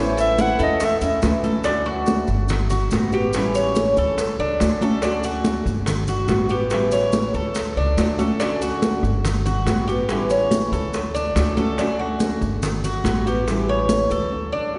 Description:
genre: latin, Cuban son and guajira.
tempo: 142 BPM.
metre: 4/4.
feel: straight.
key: D major.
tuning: A4 = 444 Hz.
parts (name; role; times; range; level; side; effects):
dark clarinet; melody; 0.0-1.0 s; C#5 to F#5; -25 LUFS; equal; none.
nylon-string guitar; accompaniment; 0.0-14.8 s; D3 to F#4; -28 LUFS; equal; none.
Cuban tres; arpeggios; 0.0-14.8 s; D4 to E5; -26 LUFS; equal; none.
upright bass; bass; 0.0-14.5 s; G1 to E2; -28 LUFS; equal; none.
bongos; percussion; 0.2-14.3 s; none; -32 LUFS; equal; none.
congas; percussion; 0.2-14.3 s; none; -28 LUFS; equal; none.
maracas; percussion; 0.2-14.3 s; none; -40 LUFS; equal; none.
room: wet church reverb, RT60 3.2 s.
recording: recorded in a church or concert hall, nothing above 10.4 kHz.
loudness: -21 LUFS.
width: mono.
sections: 0.0-1.7 A section; 1.7-14.8 B section.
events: clarinet solo 0.0-1.7; break 14.3-14.8.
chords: 0.0 A; 1.7 Dmaj7; 2.5 Gmaj7; 3.3 A7; 4.2 Dmaj7; 5.9 Gmaj7; 6.7 A7; 7.6 Dmaj7; 9.2 Gmaj7; 10.1 A7; 10.9 Dmaj7; 12.6 Gmaj7; 13.5 A7.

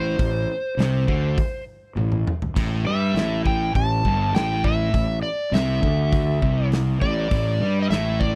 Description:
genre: blues rock power trio and southern rock.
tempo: 101 BPM.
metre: 4/4.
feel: straight.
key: A minor.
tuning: A4 = 440 Hz.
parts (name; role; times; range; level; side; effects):
overdriven slide guitar; melody; 0.0-8.4 s; C5 to A5; -29 LUFS; equal; none.
fuzz guitar; riff; 0.0-8.4 s; G2 to G3; -26 LUFS; equal; distortion.
fuzz fingered electric bass; bass; 0.0-8.4 s; G1 to G2; -28 LUFS; equal; overdrive.
big rock drum kit; drums; 0.2-8.3 s; crash cymbal, hi-hat, kick drum, snare drum, toms; -27 LUFS; equal; none.
room: little or no reverb.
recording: dry, close 1970s-style studio recording.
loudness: -22 LUFS.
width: mono.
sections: 0.0-8.4 A section.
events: drum fill 2.0-2.6.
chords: 0.0 Am.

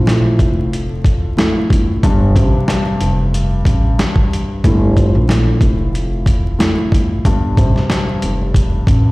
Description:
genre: hip hop, boom-bap hip-hop.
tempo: 92 BPM.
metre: 4/4.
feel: swing 55% on 16ths.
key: G minor.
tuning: A4 = 440 Hz.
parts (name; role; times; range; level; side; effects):
dark grand piano; accompaniment; 0.0-9.1 s; G2 to F3; -18 LUFS; equal; cassette tape, high-pass filter, low-pass filter.
upright bass; bass; 0.0-9.1 s; F1 to Bb1; -15 LUFS; equal; none.
dusty soul sampler-style drum kit; drums; 0.1-9.0 s; hi-hat, kick drum, snare drum; -15 LUFS; equal; none.
room: small room ambience.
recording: played on a big sound system in a bare room, large studio reverb, vinyl crackle.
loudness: -12 LUFS.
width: side -21 dB against mid.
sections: 0.0-9.1 A section.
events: none.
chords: 0.0 Gm9 (rootless); 2.0 Fadd9; 4.6 Gm9; 7.2 Fadd9.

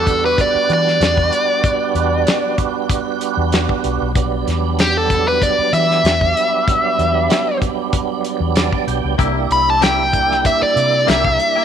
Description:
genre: straight-eighth soul blues.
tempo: 95 BPM.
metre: 4/4.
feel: straight.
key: E minor.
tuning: A4 = 440 Hz.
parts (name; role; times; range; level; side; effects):
dark smooth lead guitar; melody; 0.0-11.6 s; G4 to B5; -16 LUFS; left 1 dB; overdrive.
tonewheel organ; accompaniment; 0.0-11.6 s; F#3 to G5; -20 LUFS; right 9 dB; overdrive, chorus vibrato, slow rotary speaker.
vintage muted fingered electric bass; bass; 0.0-11.4 s; B1 to E3; -21 LUFS; left 2 dB; none.
warm soul drum kit; drums; 0.1-11.6 s; hi-hat, kick drum, snare drum; -19 LUFS; left 2 dB; none.
direct-recorded clean electric guitar; stabs; 9.2-11.6 s; C3 to G4; -24 LUFS; left 12 dB; none.
room: moderate echo chamber reverb, RT60 1.9 s, small room ambience.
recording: 1960s-style stereo with parts hard left and right.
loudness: -14 LUFS.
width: side -8 dB against mid.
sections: 0.0-11.6 A section.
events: tonewheel organ fill 8.2-9.2.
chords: 0.0 Em9; 9.2 C7.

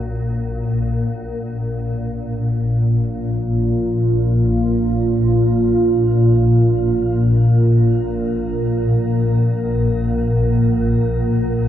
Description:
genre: dark ambient drone.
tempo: free time.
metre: none.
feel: none.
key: Bb minor.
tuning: A4 = 439 Hz.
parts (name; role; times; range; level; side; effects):
deep dark ambient pad; sustained chords; 2.0-11.7 s; Bb3 to Db5; -20 LUFS; right 2 dB; chorus, built-in reverb, shimmer reverb.
swarming drone; drone; 0.0-11.7 s; Bb1 to Bb2; -17 LUFS; left 1 dB; built-in reverb.
room: wet cathedral reverb, RT60 5.7 s.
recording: in a vast, echoing space.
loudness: -15 LUFS.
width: side -11 dB against mid.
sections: 0.0-11.7 A section.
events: none.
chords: 0.0 Bbm.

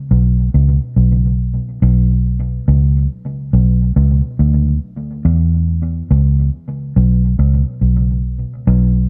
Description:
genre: reggae.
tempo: 70 BPM.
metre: 4/4.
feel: swing 63% on 16ths.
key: unclear.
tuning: A4 = 439 Hz.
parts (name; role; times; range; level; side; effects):
vintage muted fingered electric bass; solo; 0.1-9.1 s; B1 to E2; -15 LUFS; equal; tape echo.
room: little or no reverb.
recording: faint mains hum.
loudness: -15 LUFS.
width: mono.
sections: 0.0-8.7 A section.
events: none.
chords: none.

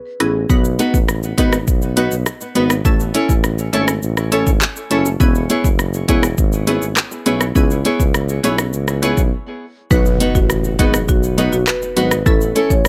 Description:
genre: dancehall.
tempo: 102 BPM.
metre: 4/4.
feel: straight.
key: unclear.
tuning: A4 = 441 Hz.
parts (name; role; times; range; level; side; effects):
marimba with medium mallets; melody; 0.2-0.3, 9.9-12.8 s; F#4 to C#5; -24 LUFS; equal; analog delay.
glassy wavetable pluck; accompaniment; 0.2-12.9 s; E3 to B4; -25 LUFS; equal; chorus.
mellow tuba; bass; 0.2-12.9 s; E1 to C#2; -23 LUFS; equal; none.
afro-pop drum kit; drums; 0.2-12.9 s; handclaps, hi-hat, kick drum, rim click, shaker; -19 LUFS; equal; none.
nylon-string guitar; arpeggios; 0.8-12.7 s; B3 to C#5; -22 LUFS; equal; analog delay.
bongos; percussion; 0.8-12.3 s; none; -33 LUFS; equal; none.
impact; sound effects; 9.9-12.3 s; none; -26 LUFS; equal; none.
room: little or no reverb.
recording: dry, gritty hardware recording.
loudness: -16 LUFS.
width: mono.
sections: 0.5-9.9 A section; 9.9-12.9 B section.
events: break 0.0-0.5, 9.3-9.9; impact 9.9-12.3.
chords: 0.5 B; 2.9 A; 5.2 E6; 7.6 C#m7; 9.9 B; 12.3 A.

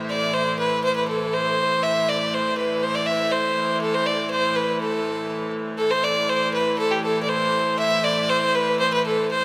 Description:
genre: medieval dance.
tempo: 120 BPM.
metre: 2/4.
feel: straight.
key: A minor.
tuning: A4 = 440 Hz.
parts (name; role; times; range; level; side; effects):
clear hurdy-gurdy; drone; 0.0-9.4 s; A2 to E3; -31 LUFS; equal; none.
clear fiddle; melody; 0.1-9.4 s; G4 to E5; -23 LUFS; equal; slapback echo.
room: wet cathedral reverb, RT60 5.2 s.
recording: none.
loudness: -22 LUFS.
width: mono.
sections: 0.0-5.8 A section; 5.8-9.4 A section.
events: none.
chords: none.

